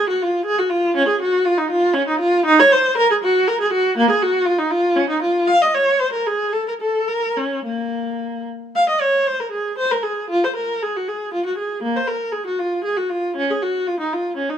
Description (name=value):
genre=classical, baroque-style suite movement for unaccompanied viola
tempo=106-124 BPM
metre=3/4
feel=rubato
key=Bb minor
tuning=A4 = 439 Hz
part: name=warm viola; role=solo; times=0.0-14.6 s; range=Bb3 to F5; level=-17 LUFS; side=equal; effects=none
room=light reverb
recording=minimal, uncompressed stereo recording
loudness=-17 LUFS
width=side -9 dB against mid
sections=0.0-8.7 A section; 8.7-14.6 A section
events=none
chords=none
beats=0.46 | 0.96 1.45 1.94 | 2.45 2.97 3.48 | 3.97 4.47 4.97 | 5.48 6.00 6.53 | 7.08 7.64 8.19 | 8.74 9.26 9.77 | 10.30 10.82 11.33 | 11.83 12.33 12.84 | 13.35 13.87 14.36